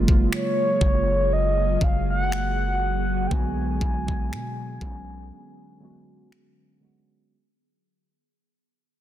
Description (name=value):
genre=contemporary R&B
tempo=60 BPM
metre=4/4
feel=swing 54% on 16ths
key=unclear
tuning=A4 = 440 Hz
part: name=muted felt-like synth keys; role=accompaniment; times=0.0-7.3 s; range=C#3 to F#4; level=-30 LUFS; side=right 4 dB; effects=chorus, low-pass filter
part: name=ethereal airy pad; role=sustained chords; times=0.0-7.3 s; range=D3 to G#4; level=-32 LUFS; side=right 1 dB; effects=ensemble chorus, built-in reverb, sidechain pumping, low-pass filter
part: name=long sustained 808-style bass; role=bass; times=0.0-5.3 s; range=F#1 to B2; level=-27 LUFS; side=equal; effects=none
part: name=trap drum kit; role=drums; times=0.1-6.6 s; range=finger snaps, kick drum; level=-23 LUFS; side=equal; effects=soft clipping on snare
part: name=mellow horn-like synth lead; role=melody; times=0.3-6.3 s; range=C#5 to G#5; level=-26 LUFS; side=equal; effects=chorus, low-pass filter, ping-pong delay
room=little or no reverb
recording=dense, heavily limited modern master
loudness=-21 LUFS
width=side -12 dB against mid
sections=0.0-7.3 A section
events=fade-out 0.0-7.3; filter sweep 0.0-7.3; break 5.3-7.3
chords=0.0 F#maj9; 3.3 Bm6